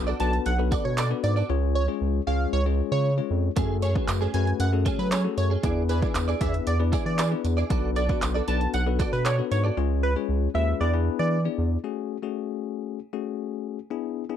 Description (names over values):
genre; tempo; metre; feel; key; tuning
dance-pop; 116 BPM; 4/4; straight; F# minor; A4 = 440 Hz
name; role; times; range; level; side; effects
bell-like tine electric piano; accompaniment; 0.0-14.4 s; G#3 to D5; -29 LUFS; left 15 dB; medium stereo tremolo, sidechain pumping
round analog bass; bass; 0.0-11.8 s; B1 to F#3; -25 LUFS; right 1 dB; sidechain pumping
direct-recorded clean electric guitar; riff; 0.1-9.8 s; A3 to D5; -32 LUFS; right 6 dB; ensemble chorus
tambourine; percussion; 0.1-9.6 s; none; -43 LUFS; right 20 dB; none
plucky unison lead; melody; 0.2-11.4 s; B4 to A5; -29 LUFS; right 2 dB; sidechain pumping, slapback echo
deep house drum kit; drums; 0.2-9.6 s; handclaps, hi-hat, kick drum; -28 LUFS; right 1 dB; overdrive
room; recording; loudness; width
digital ambience; dry, close 1970s-style studio recording; -23 LUFS; side -9 dB against mid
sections
0.0-11.8 A section; 11.8-14.4 B section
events
drop 0.0-11.8; drums muted 1.5-3.6; silent gap 9.8-11.8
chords
0.0 Bm7; 1.5 C#; 3.6 F#madd9; 5.6 E7; 7.7 Bm7; 9.8 C#; 10.8 E7; 11.8 F#madd9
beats
0.46 0.98 | 1.50 2.01 2.53 3.05 | 3.57 4.08 4.60 5.12 | 5.63 6.15 6.67 7.19 | 7.70 8.22 8.74 9.26 | 9.77 10.29 10.81 11.32 | 11.84 12.36 12.88 13.39 | 13.91